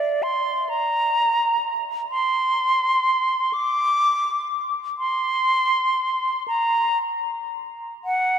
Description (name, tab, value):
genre	classical, free, expressive piece for unaccompanied flute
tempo	38-44 BPM (dotted quarters)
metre	6/8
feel	rubato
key	unclear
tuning	A4 = 438 Hz
part	bright concert flute	solo	0.0-8.4 s	D5 to D6	-20 LUFS	equal	none
room	wet cathedral reverb, RT60 4.7 s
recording	none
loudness	-19 LUFS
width	side -8 dB against mid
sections	0.0-8.4 A section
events	none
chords	none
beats	0.71 | 2.12 3.53 | 4.99 6.48 | 8.03